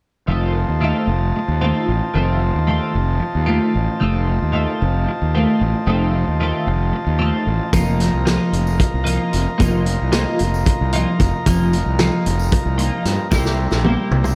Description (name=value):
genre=psychedelic rock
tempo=226 BPM (eighths)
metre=7/8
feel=straight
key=F mixolydian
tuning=A4 = 440 Hz
part: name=combo organ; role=sustained chords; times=0.3-14.3 s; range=F4 to Bb5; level=-28 LUFS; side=equal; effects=none
part: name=twelve-string electric guitar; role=riff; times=0.3-14.2 s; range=Eb3 to G4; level=-24 LUFS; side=equal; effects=flanger, double-tracked
part: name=fuzz fingered electric bass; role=bass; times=0.3-14.3 s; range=F1 to G2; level=-22 LUFS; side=equal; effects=overdrive
part: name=vintage drum kit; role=drums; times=7.7-14.3 s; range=hi-hat, kick drum, snare drum, toms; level=-23 LUFS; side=equal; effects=none
part: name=tambourine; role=percussion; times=7.7-14.3 s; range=none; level=-43 LUFS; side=equal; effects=none
room=moderate church reverb, RT60 3.8 s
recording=dreamy mix soaked in reverb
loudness=-18 LUFS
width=mono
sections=0.3-14.3 A section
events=drum fill 13.3-14.3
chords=0.3 F7; 7.7 Ebsus2/F; 13.3 C7